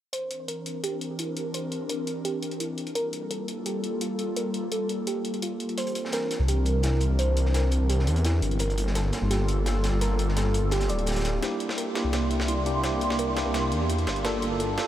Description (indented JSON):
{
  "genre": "liquid drum and bass",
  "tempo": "170 BPM",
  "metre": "4/4",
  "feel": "straight",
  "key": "unclear",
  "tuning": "A4 = 439 Hz",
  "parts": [
    { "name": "airy breathy pad", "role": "sustained chords", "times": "0.1-14.9 s", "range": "E3 to C6", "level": "-31 LUFS", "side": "equal", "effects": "chorus" },
    { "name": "harp-like synth pluck", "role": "arpeggios", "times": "0.1-14.8 s", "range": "E4 to D5", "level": "-33 LUFS", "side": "right 2 dB", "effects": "chorus, analog delay" },
    { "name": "breakbeat sampler-style drum kit", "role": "drums", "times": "0.1-14.8 s", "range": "hi-hat, snare drum", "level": "-34 LUFS", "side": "left 1 dB", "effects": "high-pass filter on hats, high-pass filter on snare, high-pass filter on room" },
    { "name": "crunchy breakbeat drum kit", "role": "drums", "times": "5.8-11.3 s", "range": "hi-hat, snare drum", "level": "-36 LUFS", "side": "equal", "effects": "high-pass filter on hats, high-pass filter on snare, high-pass filter on room" },
    { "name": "swelling detuned saw bass", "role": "bass", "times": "6.4-14.8 s", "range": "D1 to E2", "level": "-25 LUFS", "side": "equal", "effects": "none" },
    { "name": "tine electric piano", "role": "accompaniment", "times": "11.4-14.9 s", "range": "Bb3 to A4", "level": "-29 LUFS", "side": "equal", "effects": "medium stereo tremolo, low-pass filter, analog delay" }
  ],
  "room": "moderate huge ambient reverb, RT60 7.0 s",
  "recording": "dreamy mix soaked in reverb",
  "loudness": "-24 LUFS",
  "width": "side -12 dB against mid",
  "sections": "0.1-11.4 A section; 11.4-14.9 B section",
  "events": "filter sweep on analog synth pad 0.1-11.4; filter sweep on synth pluck 0.1-11.4, 11.4-14.9; build-up 11.4-14.9; drum fill 11.4-14.9; filter sweep on tine electric piano 11.4-14.9",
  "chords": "0.1 C9; 3.0 Gm9; 5.8 C9; 8.6 Gm9; 11.4 C9; 14.2 Gm9"
}